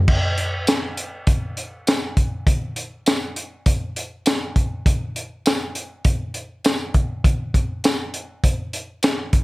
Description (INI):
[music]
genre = blues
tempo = 100 BPM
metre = 4/4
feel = straight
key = none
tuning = none
[part]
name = crunchy breakbeat drum kit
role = drums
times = 0.1-9.4 s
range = crash cymbal, hi-hat, kick drum, snare drum, tambourine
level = -18 LUFS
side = equal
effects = none
[sound]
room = little or no reverb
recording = none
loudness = -20 LUFS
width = side -22 dB against mid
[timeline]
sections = 0.1-9.4 A section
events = none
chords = none